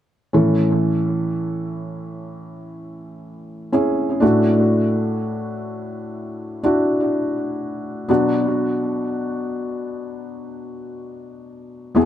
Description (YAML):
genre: pop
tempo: 62 BPM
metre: 4/4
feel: straight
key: A major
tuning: A4 = 440 Hz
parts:
  - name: felt-muted upright piano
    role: accompaniment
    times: 0.3-12.1 s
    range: E2 to A4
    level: -19 LUFS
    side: equal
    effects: tape echo
room: moderate spring reverb, RT60 1.7 s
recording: echo-heavy mix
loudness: -18 LUFS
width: side -11 dB against mid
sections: 0.3-12.1 A section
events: none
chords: 0.3 A; 4.2 Dadd9/A; 8.1 Bm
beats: | 0.35 1.32 2.28 3.25 | 4.22 5.19 6.16 7.12 | 8.09 9.06 10.03 10.99 | 11.96